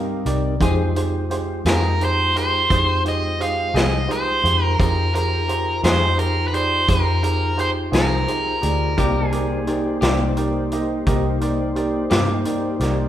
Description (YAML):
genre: slow blues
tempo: 57 BPM (dotted quarters)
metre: 12/8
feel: straight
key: unclear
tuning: A4 = 439 Hz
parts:
  - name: clear upright piano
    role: accompaniment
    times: 0.0-13.1 s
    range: Eb4 to F5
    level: -26 LUFS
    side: right 5 dB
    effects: none
  - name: mellow tonewheel organ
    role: sustained chords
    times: 0.0-13.1 s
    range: G3 to C5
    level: -28 LUFS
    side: left 2 dB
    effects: slow rotary speaker
  - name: vintage muted fingered electric bass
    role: bass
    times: 0.3-13.1 s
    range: C2 to G2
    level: -22 LUFS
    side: left 1 dB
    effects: none
  - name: vintage drum kit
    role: drums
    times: 0.3-13.0 s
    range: hi-hat, kick drum, snare drum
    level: -24 LUFS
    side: equal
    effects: none
  - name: clean electric guitar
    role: accompaniment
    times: 0.6-12.3 s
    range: C3 to Ab4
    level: -28 LUFS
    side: left 2 dB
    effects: harmonic tremolo
  - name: overdriven electric guitar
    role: melody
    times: 1.7-10.0 s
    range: Bb4 to F5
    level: -21 LUFS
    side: equal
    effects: none
room: moderate concert hall reverb, RT60 2.0 s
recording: recorded in a church or concert hall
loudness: -17 LUFS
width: side -11 dB against mid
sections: 0.0-13.1 A section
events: none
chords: 0.0 Cm7; 0.6 Fm7; 9.0 Cm7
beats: | 0.60 1.65 2.70 3.75 | 4.80 5.84 6.89 7.93 | 8.98 10.03 11.07 12.11